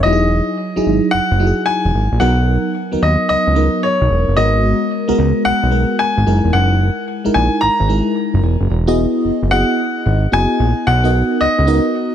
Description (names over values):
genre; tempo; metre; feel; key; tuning
R&B, new jack swing; 111 BPM; 4/4; swing 65% on 16ths; unclear; A4 = 440 Hz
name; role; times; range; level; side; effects
clear grand piano; melody; 0.0-12.1 s; C#5 to A#5; -18 LUFS; left 1 dB; ping-pong delay
FM electric piano with soft pad layer; accompaniment; 0.0-12.1 s; F#3 to E5; -17 LUFS; equal; chorus, tremolo
fat analog bass; bass; 0.0-11.8 s; E1 to D#2; -15 LUFS; equal; none
room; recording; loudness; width
small room reverb; none; -13 LUFS; side -10 dB against mid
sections
0.0-8.7 A section; 8.7-12.1 B section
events
none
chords
0.0 Emaj9; 2.2 Bmaj7; 4.4 G#m9; 6.3 F#13; 8.7 Emaj9; 10.9 Bmaj7